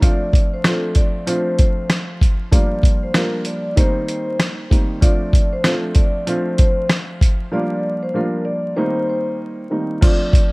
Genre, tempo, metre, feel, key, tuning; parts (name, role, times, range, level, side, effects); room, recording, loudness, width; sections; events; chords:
hip hop, boom-bap hip-hop; 96 BPM; 4/4; swing 60% on 16ths; D phrygian; A4 = 440 Hz
vibraphone with soft mallets; melody; 0.0-10.5 s; A4 to D5; -24 LUFS; left 1 dB; high-pass filter, low-pass filter
dark upright piano; accompaniment; 0.0-10.5 s; Eb3 to F4; -22 LUFS; equal; high-pass filter, low-pass filter
dusty soul sampler-style drum kit; drums; 0.0-10.5 s; crash cymbal, hi-hat, kick drum, rim click, snare drum; -15 LUFS; equal
digital ambience; vinyl crackle; -15 LUFS; side -26 dB against mid
0.0-10.0 A section
break 7.5-10.0
0.0 Dm7; 2.5 Gm7; 3.8 Cm7; 5.0 Dm7; 7.5 Gm7; 8.8 Cm7